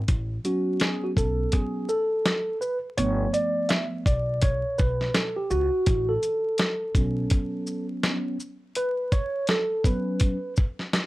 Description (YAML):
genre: hip hop, jazz-hop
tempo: 83 BPM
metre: 4/4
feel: swing 62% on 16ths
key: A major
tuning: A4 = 442 Hz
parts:
  - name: upright bass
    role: bass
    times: 0.1-7.2 s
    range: G1 to C#2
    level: -29 LUFS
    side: equal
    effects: none
  - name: dusty soul sampler-style drum kit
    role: drums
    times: 0.1-11.1 s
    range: hi-hat, kick drum, shaker, snare drum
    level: -24 LUFS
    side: equal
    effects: none
  - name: mellow tine electric piano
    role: accompaniment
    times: 0.4-10.5 s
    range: F3 to E5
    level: -26 LUFS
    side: right 1 dB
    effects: lush chorus
room: moderate small room reverb, RT60 0.6 s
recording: vinyl crackle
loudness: -23 LUFS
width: side -18 dB against mid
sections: 0.1-11.1 A section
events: tine electric piano solo 0.1-11.1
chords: 0.1 A69; 3.0 G9; 5.9 A69